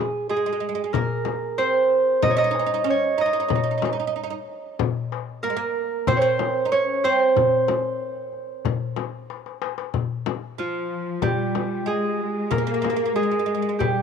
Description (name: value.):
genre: Turkish makam ensemble.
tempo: 93 BPM.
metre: 4/4.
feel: straight.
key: unclear.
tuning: A4 = 441 Hz.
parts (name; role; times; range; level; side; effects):
Celtic harp; melody; 0.0-14.0 s; F4 to Eb5; -22 LUFS; right 2 dB; none.
darbuka; percussion; 0.1-14.0 s; none; -28 LUFS; left 7 dB; none.
oud; second line; 0.3-14.0 s; F3 to Eb4; -29 LUFS; right 12 dB; none.
frame drum; percussion; 0.9-14.0 s; none; -28 LUFS; left 10 dB; none.
rich studio cello section; second line; 10.6-14.0 s; F3 to Bb3; -29 LUFS; left 11 dB; none.
room: light reverb.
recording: 1960s-style stereo with parts hard left and right.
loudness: -21 LUFS.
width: side -7 dB against mid.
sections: 0.0-9.9 A section; 9.9-14.0 B section.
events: drum fill 9.3-9.9.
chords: none.